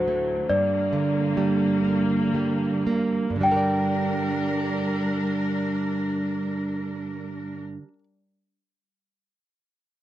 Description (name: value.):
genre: children's music, lullaby.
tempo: 52-74 BPM.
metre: 3/4.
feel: straight.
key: G minor.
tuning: A4 = 437 Hz.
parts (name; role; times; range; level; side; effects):
celesta; melody; 0.0-7.9 s; C5 to G5; -26 LUFS; left 2 dB; none.
flamenco guitar; accompaniment; 0.0-8.0 s; G2 to D5; -25 LUFS; right 3 dB; none.
clear symphonic string section; sustained chords; 0.0-7.6 s; D2 to Bb4; -28 LUFS; left 3 dB; none.
room: little or no reverb.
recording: dry, close 1970s-style studio recording.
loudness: -22 LUFS.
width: side -13 dB against mid.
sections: 0.0-3.4 A section; 3.4-6.8 B section.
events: slowing down 0.0-3.4.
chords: 0.5 Gm.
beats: | 0.48 1.36 2.33 | 3.42 4.57 5.70.